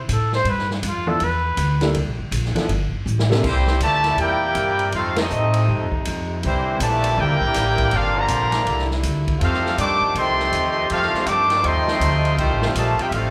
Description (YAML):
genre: jazz, big band swing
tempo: 161 BPM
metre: 4/4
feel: swing 63% on 8ths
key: C major from 3.4 s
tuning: A4 = 440 Hz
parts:
  - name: mellow trumpet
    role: melody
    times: 0.0-2.0 s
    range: D4 to C5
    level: -25 LUFS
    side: equal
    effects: plate reverb, slapback echo
  - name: upright bass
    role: bass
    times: 0.0-13.3 s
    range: F1 to A2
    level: -25 LUFS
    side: equal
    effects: none
  - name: swinging big-band drum kit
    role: drums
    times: 0.1-13.2 s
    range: crash cymbal, hi-hat, kick drum, ride cymbal, snare drum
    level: -31 LUFS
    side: equal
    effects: none
  - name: warm concert grand piano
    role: accompaniment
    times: 1.1-3.4 s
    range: C3 to A4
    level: -26 LUFS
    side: equal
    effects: plate reverb, slapback echo
  - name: brilliant trombone section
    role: sustained chords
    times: 3.4-13.3 s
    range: Bb2 to G4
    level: -32 LUFS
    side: equal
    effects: plate reverb
  - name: brilliant trumpet section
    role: melody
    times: 3.5-13.3 s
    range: A3 to D6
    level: -23 LUFS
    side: equal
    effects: plate reverb
  - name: muted trombone section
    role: second line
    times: 3.5-13.3 s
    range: Bb2 to G4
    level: -27 LUFS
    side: equal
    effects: plate reverb, slapback echo
room: light reverb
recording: live gig heard through the venue's PA, club reverb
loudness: -20 LUFS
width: mono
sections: 0.0-3.4 A section; 3.4-13.3 B section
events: trumpet solo 0.0-3.4; drum fill 3.1-3.4; band accent 5.1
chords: 0.5 G13; 2.0 C13; 2.7 Gsus2; 3.4 C13; 4.9 F9; 6.4 C13; 7.9 Gm7; 8.7 C9; 9.4 F13